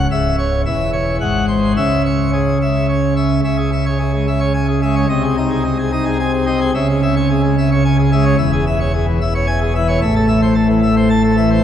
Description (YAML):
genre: classical, organ toccata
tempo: 109 BPM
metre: 3/4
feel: straight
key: C# minor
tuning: A4 = 440 Hz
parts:
  - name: pipe organ, plenum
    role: solo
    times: 0.0-11.6 s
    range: C#1 to A5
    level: -13 LUFS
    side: equal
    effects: none
room: wet cathedral reverb, RT60 4.3 s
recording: dark, warm production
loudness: -13 LUFS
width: side -9 dB against mid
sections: 0.0-3.4 A section; 3.4-11.6 B section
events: none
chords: 0.1 C#m; 0.7 C#m/E; 1.2 G#7; 1.8 C#m; 5.1 G#/B#; 6.7 C#m; 8.4 C#m/E; 10.0 Am